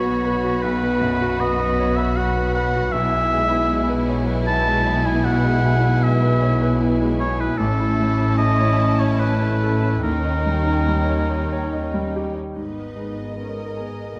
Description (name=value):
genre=cinematic, emotional film score for orchestra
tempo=69-79 BPM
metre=3/4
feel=rubato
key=unclear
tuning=A4 = 436 Hz
part: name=muted symphonic violin section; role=melody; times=0.0-12.4 s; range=G5 to B5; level=-37 LUFS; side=equal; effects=none
part: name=clear oboe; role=second line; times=0.0-12.1 s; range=A4 to A5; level=-26 LUFS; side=equal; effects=none
part: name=muted studio violin section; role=second line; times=0.0-14.2 s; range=D#4 to D#5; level=-32 LUFS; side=equal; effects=none
part: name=clear concert grand piano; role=accompaniment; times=0.0-14.2 s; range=A1 to D#5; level=-27 LUFS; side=equal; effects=none
part: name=muted symphonic viola section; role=accompaniment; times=0.0-14.2 s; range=B3 to A#4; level=-30 LUFS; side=equal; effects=none
part: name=muted symphonic cello section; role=bass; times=0.0-14.2 s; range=D#2 to B2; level=-27 LUFS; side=equal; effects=none
part: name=muted symphonic double bass section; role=bass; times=0.0-14.1 s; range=G#1 to D#2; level=-28 LUFS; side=equal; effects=none
room=moderate scoring stage reverb, RT60 1.9 s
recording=none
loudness=-20 LUFS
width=mono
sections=0.0-12.6 A section; 12.6-14.2 B section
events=none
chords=0.0 B5; 2.9 E/B; 7.6 A; 10.0 D#7; 12.6 G#madd9